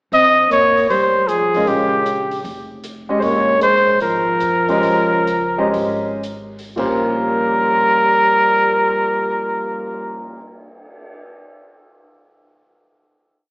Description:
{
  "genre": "modal jazz",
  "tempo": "108-155 BPM",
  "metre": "4/4",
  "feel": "swing 66% on 8ths",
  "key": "Bb dorian",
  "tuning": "A4 = 440 Hz",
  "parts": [
    { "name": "breathy trumpet", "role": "melody", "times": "0.1-10.3 s", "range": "G4 to Eb5", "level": "-15 LUFS", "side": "equal", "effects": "none" },
    { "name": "breathy trombone", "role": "second line", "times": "0.1-10.3 s", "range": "Db3 to C4", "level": "-23 LUFS", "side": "equal", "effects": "none" },
    { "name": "upright bass", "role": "bass", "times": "0.1-10.3 s", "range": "F1 to F2", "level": "-37 LUFS", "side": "equal", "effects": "none" },
    { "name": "open jazz drum kit", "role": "drums", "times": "0.1-11.1 s", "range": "crash cymbal, cymbal swell, hi-hat, kick drum", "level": "-40 LUFS", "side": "equal", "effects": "none" },
    { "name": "clear baby grand piano", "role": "accompaniment", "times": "1.6-10.4 s", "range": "Bb2 to Eb5", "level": "-22 LUFS", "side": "equal", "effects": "none" }
  ],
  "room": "wet scoring stage reverb, RT60 1.8 s",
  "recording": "recorded in a church or concert hall, AM radio sound",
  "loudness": "-14 LUFS",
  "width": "side -33 dB against mid",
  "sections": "0.1-6.8 A section; 6.8-11.2 final chord",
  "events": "slowing down 3.2-6.8",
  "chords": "0.1 Bbm69; 3.2 Db6; 6.8 Bbm69"
}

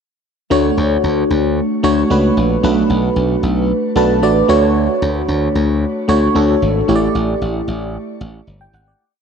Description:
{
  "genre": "pop",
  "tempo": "113 BPM",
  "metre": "4/4",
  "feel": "straight",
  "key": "D major",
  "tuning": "A4 = 440 Hz",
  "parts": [
    { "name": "FM electric piano", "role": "accompaniment", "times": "0.5-9.1 s", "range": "A3 to A5", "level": "-14 LUFS", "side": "equal", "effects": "chorus, phaser, shimmer reverb" },
    { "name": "glassy slap bass", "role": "bass", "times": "0.5-8.9 s", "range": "G1 to D2", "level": "-18 LUFS", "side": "equal", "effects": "none" }
  ],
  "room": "moderate lush hall reverb, RT60 2.7 s",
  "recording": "dark, warm production",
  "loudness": "-13 LUFS",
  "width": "side -6 dB against mid",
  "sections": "0.5-9.0 verse",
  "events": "FM electric piano fill 3.7-4.8; fade-out 6.9-9.0",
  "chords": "0.5 Dmaj7; 2.6 Bm7; 4.5 Dmaj7; 6.9 A7sus4"
}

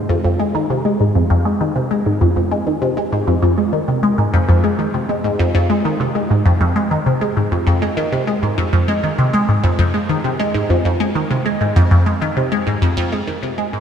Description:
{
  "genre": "ambient",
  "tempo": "99 BPM",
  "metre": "4/4",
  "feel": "straight",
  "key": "F minor",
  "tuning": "A4 = 440 Hz",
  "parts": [
    { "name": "resonant blip pluck", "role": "solo", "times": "0.0-13.8 s", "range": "F2 to Ab3", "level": "-14 LUFS", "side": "equal", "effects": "phaser, wide subtle chorus, ping-pong delay" }
  ],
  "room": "wet lush hall reverb, RT60 3.4 s",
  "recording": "dreamy mix soaked in reverb",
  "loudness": "-14 LUFS",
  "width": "side -8 dB against mid",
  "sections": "0.0-13.8 A section",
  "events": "fade-out 12.0-13.8",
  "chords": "none"
}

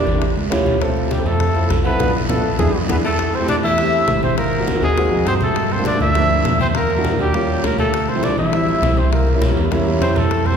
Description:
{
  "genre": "Afro-Cuban jazz",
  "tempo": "202 BPM",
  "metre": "4/4",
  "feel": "straight",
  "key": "D minor",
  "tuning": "A4 = 440 Hz",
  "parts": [
    { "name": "breathy trumpet", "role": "melody", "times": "0.0-10.6 s", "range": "G4 to E5", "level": "-21 LUFS", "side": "equal", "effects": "none" },
    { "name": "breathy tenor saxophone", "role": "second line", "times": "0.0-10.6 s", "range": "G3 to E4", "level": "-25 LUFS", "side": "left 2 dB", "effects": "none" },
    { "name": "warm concert grand piano", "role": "accompaniment", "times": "0.0-10.6 s", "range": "F3 to F5", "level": "-21 LUFS", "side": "right 2 dB", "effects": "none" },
    { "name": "plucky analog bass", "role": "bass", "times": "0.1-10.6 s", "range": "G#1 to G2", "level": "-20 LUFS", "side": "equal", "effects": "none" },
    { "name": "bongos", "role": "percussion", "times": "0.1-10.6 s", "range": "none", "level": "-29 LUFS", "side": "left 4 dB", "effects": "none" },
    { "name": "congas", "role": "percussion", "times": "0.1-10.6 s", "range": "none", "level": "-25 LUFS", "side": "equal", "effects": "none" },
    { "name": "guiro", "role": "percussion", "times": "0.1-10.6 s", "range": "none", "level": "-33 LUFS", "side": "right 3 dB", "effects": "none" }
  ],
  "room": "wet church reverb, RT60 2.9 s",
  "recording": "recorded in a church or concert hall",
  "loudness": "-15 LUFS",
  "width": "side -7 dB against mid",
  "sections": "0.0-3.2 A section; 3.2-10.6 B section",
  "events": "grand piano fill 0.4-0.8; band accent 2.0-3.2; drum fill 2.3-3.2",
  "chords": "0.2 A7b13; 0.8 Dm7; 2.0 Bm7b5; 2.6 E7; 3.2 Am7; 4.4 G#9; 5.6 Gm9; 6.7 Em7b5; 7.3 Eb9; 7.9 Dm11; 9.1 C7b9"
}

